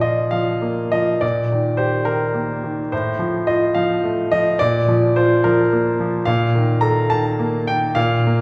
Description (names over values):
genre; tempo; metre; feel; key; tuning
classical, romantic character piece for solo piano; 71 BPM (dotted quarters); 6/8; rubato; Bb major; A4 = 438 Hz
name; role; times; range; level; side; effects
bright concert grand piano; solo; 0.0-8.4 s; A2 to Bb5; -19 LUFS; equal; none
room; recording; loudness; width
wet recital hall reverb, RT60 1.5 s; heard from further back in the room; -19 LUFS; mono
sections
0.0-8.4 A section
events
none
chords
0.0 Bb; 1.2 Bbadd11; 2.9 F/A; 4.6 Bb; 6.3 F7/Bb